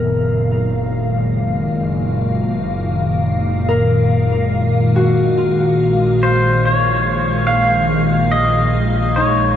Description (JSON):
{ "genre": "ambient", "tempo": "71 BPM", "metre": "4/4", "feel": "straight", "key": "unclear", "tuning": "A4 = 440 Hz", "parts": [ { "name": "soft additive organ-like pad", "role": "sustained chords", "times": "0.0-9.6 s", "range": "Bb2 to F5", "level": "-16 LUFS", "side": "left 1 dB", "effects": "ensemble chorus, built-in reverb" }, { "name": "Celtic harp", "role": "arpeggios", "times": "0.0-9.6 s", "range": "Eb4 to Bb4", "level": "-22 LUFS", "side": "left 1 dB", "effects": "shimmer reverb, diffuse ambient delay" }, { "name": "clear chamber double bass section", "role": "bass", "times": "0.0-9.6 s", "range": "Gb1 to Bb1", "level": "-24 LUFS", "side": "equal", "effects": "none" }, { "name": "analog drone", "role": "drone", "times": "2.9-9.6 s", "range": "none", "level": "barely audible", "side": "none", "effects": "none" }, { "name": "pedal steel guitar", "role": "melody", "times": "6.2-9.6 s", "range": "C5 to F5", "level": "-16 LUFS", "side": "equal", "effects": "shimmer reverb, diffuse ambient delay" } ], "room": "wet huge ambient reverb, RT60 8.3 s", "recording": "nothing above 7.9 kHz", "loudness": "-14 LUFS", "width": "side -10 dB against mid", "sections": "0.0-9.6 A section", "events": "none", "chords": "0.0 Gbadd9; 5.8 Bbm", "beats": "0.72 1.57 | 2.42 3.26 4.11 4.95 | 5.79 6.64 7.49 8.33 | 9.18" }